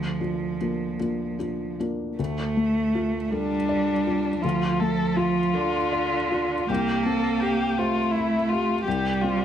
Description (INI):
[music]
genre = neoclassical piano and strings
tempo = 54 BPM (dotted quarters)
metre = 6/8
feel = uneven beats, rubato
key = D minor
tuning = A4 = 443 Hz
[part]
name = rich cello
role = second line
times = 0.0-9.4 s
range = D3 to Bb3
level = -26 LUFS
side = right 4 dB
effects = none
[part]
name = felt-muted upright piano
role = accompaniment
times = 0.0-9.4 s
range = C2 to E5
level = -28 LUFS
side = left 3 dB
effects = none
[part]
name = dark violin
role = melody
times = 3.3-9.4 s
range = D4 to A4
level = -26 LUFS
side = left 3 dB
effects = plate reverb
[sound]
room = moderate studio reverb, RT60 0.8 s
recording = none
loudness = -22 LUFS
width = side -9 dB against mid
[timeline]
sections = 0.0-2.2 A section; 2.2-9.4 A section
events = none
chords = 0.0 Bb/D; 2.2 Dm; 6.7 C